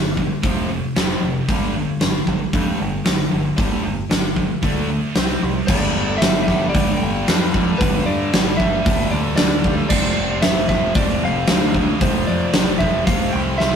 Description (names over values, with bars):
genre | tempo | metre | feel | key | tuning
hard rock | 114 BPM | 4/4 | straight | unclear | A4 = 440 Hz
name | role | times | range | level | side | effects
distorted electric guitar | riff | 0.0-13.8 s | F2 to D4 | -27 LUFS | left 6 dB | overdrive
scooped high-gain guitar | riff | 0.0-13.8 s | F2 to D4 | -26 LUFS | right 4 dB | distortion
growling picked electric bass | bass | 0.0-13.8 s | F1 to G2 | -25 LUFS | equal | overdrive
huge arena drum kit | drums | 0.2-13.8 s | crash cymbal, hi-hat, kick drum, snare drum | -18 LUFS | equal | none
lightly driven lead guitar | melody | 5.7-13.8 s | B4 to G5 | -24 LUFS | right 1 dB | none
room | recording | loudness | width
light reverb | rough rehearsal-room recording, warm saturation | -16 LUFS | side -7 dB against mid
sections
0.0-5.7 A section; 5.7-13.8 B section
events
drum fill 13.6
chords
0.4 F5; 1.5 G5; 4.6 D5; 5.2 C5; 5.7 G5; 9.9 F5